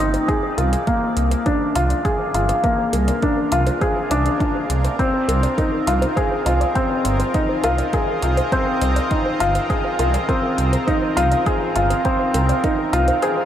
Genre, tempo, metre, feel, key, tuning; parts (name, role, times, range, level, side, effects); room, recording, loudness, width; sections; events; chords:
piano and strings electronica; 102 BPM; 4/4; straight; A4 = 439 Hz
lush unison pad; sustained chords; 0.0-13.4 s; C4 to Eb5; -30 LUFS; right 1 dB; chorus, sidechain pumping
soft round pluck; arpeggios; 0.0-13.4 s; Bb4 to C6; -29 LUFS; equal; chorus, sidechain pumping, diffuse ambient delay
warm upright piano; riff; 0.0-13.4 s; Bb3 to Ab4; -19 LUFS; left 1 dB; analog chorus, low-pass filter, diffuse ambient delay
dark detuned saw bass; bass; 0.0-13.1 s; G1 to C2; -20 LUFS; right 1 dB; sidechain pumping
electronic hi-hat; drums; 0.1-13.3 s; -33 LUFS; equal; overdrive
electronic kick drum; drums; 0.3-12.8 s; -24 LUFS; right 1 dB; overdrive
wet huge ambient reverb, RT60 7.8 s; dreamy mix soaked in reverb; -17 LUFS; side -10 dB against mid
0.0-13.4 A section
fade-in on analog synth pad 0.0-13.4; filter sweep on upright piano 0.0-13.4; break 13.2
0.3 Bb7; 5.0 Fm7